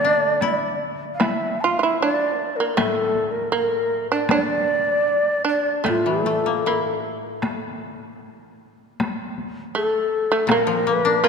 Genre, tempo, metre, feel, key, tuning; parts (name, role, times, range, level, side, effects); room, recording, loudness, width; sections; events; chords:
japanese traditional, Japanese chamber music; 78 BPM; 2/4; rubato; D hirajoshi; A4 = 440 Hz
breathy mellow shakuhachi; melody; 0.0-7.0, 9.8-11.3 s; A4 to A5; -22 LUFS; left 1 dB
shamisen; second line; 0.0-7.0, 9.7-11.3 s; A3 to F4; -24 LUFS; right 4 dB
koto; accompaniment; 0.0-11.3 s; A2 to F4; -26 LUFS; left 5 dB
taiko ensemble; percussion; 0.4-10.7 s; -27 LUFS; left 2 dB
wet church reverb, RT60 3.1 s; -19 LUFS; side -5 dB against mid
0.0-1.2 A section; 1.2-11.3 B section